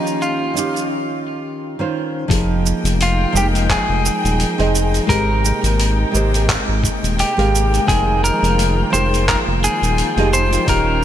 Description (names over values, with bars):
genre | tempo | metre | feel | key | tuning
sunset chillout | 86 BPM | 4/4 | swing 56% on 16ths | F minor | A4 = 443 Hz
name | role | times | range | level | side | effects
clean electric guitar | melody | 0.0-11.0 s | Eb4 to C5 | -20 LUFS | equal | digital delay
nylon-string guitar | accompaniment | 0.0-11.0 s | Eb3 to G5 | -22 LUFS | equal | auto-pan, digital delay
dark studio string section | sustained chords | 0.0-11.0 s | C3 to G5 | -24 LUFS | equal | none
dusty soul sampler-style drum kit | drums | 0.1-10.8 s | handclaps, hi-hat, shaker | -23 LUFS | right 2 dB | gated reverb
round analog bass | bass | 2.3-11.0 s | Eb1 to Ab1 | -18 LUFS | equal | none
electronic kick drum | drums | 2.3-10.8 s | none | -21 LUFS | equal | none
room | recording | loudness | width
light reverb | bright 1980s-style digital production | -15 LUFS | side -10 dB against mid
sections
0.0-2.3 A section; 2.3-11.0 B section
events
filter sweep on nylon-string guitar 0.0-2.3; break 0.9-2.3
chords
0.0 Eb9; 2.3 Fm11; 5.1 Abmaj9; 7.9 Fm11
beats
0.21 0.91 1.61 | 2.30 3.00 3.70 4.40 | 5.09 5.79 6.49 7.19 | 7.88 8.58 9.28 9.98 | 10.68